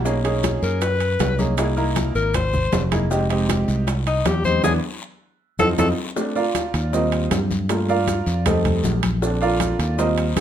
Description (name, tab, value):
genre	Afro-Cuban jazz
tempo	157 BPM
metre	4/4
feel	straight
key	Bb major from 6.2 s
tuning	A4 = 439 Hz
part	warm upright piano	accompaniment	0.0-10.3 s	G3 to F5	-23 LUFS	right 2 dB	none
part	fingered electric bass	bass	0.0-10.4 s	F1 to G2	-22 LUFS	equal	none
part	bongos	percussion	0.1-10.4 s	none	-30 LUFS	left 4 dB	none
part	congas	percussion	0.1-10.4 s	none	-27 LUFS	left 2 dB	none
part	guiro	percussion	0.1-10.4 s	none	-37 LUFS	left 5 dB	none
part	maracas	percussion	0.1-10.4 s	none	-38 LUFS	right 6 dB	none
part	timbales	percussion	0.2-10.4 s	none	-29 LUFS	right 8 dB	none
part	clear alto saxophone	melody	0.6-5.9 s	Eb4 to C5	-22 LUFS	left 4 dB	none
room	moderate studio reverb, RT60 0.8 s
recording	none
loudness	-18 LUFS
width	side -10 dB against mid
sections	0.0-6.2 A section; 6.2-10.4 A section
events	alto saxophone solo 0.0-6.2; band accent 4.6-6.2; drum fill 5.4-6.2; upright piano solo 6.2-10.4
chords	0.1 Bmaj13; 1.6 C7alt; 3.1 Fm9; 4.6 E7(no3); 5.4 F7; 6.2 Bbmaj7; 6.9 Eb6; 7.7 Gm9; 8.5 F7; 9.2 Bbmaj7